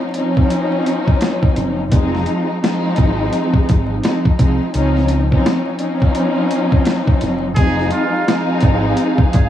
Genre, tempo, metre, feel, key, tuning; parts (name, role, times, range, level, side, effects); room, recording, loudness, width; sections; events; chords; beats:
hip hop, boom-bap hip-hop; 85 BPM; 4/4; swing 60% on 16ths; F minor; A4 = 441 Hz
warm studio string section; accompaniment; 0.0-9.5 s; F3 to Eb4; -17 LUFS; left 1 dB; high-pass filter, low-pass filter
boom bap sampler-style drum kit; drums; 0.1-9.5 s; hi-hat, kick drum, snare drum; -16 LUFS; equal
deep dub fingered electric bass; bass; 1.6-9.5 s; F1 to Db2; -18 LUFS; equal
trumpet with straight mute; melody; 7.6-9.5 s; F4 to Ab4; -23 LUFS; right 3 dB; high-pass filter, low-pass filter, tape echo
clear studio string section; sustained chords; 7.6-9.5 s; Eb4 to F5; -26 LUFS; right 2 dB; high-pass filter, low-pass filter
light reverb, small room reverb; vinyl crackle; -14 LUFS; side -11 dB against mid
0.0-7.6 A section; 7.6-9.5 B section
0.0 Dbmaj9; 1.9 Fm7; 4.7 Dbmaj9; 7.6 Fm7
0.51 1.21 | 1.92 2.62 3.33 4.04 | 4.74 5.45 6.15 6.86 | 7.57 8.27 8.98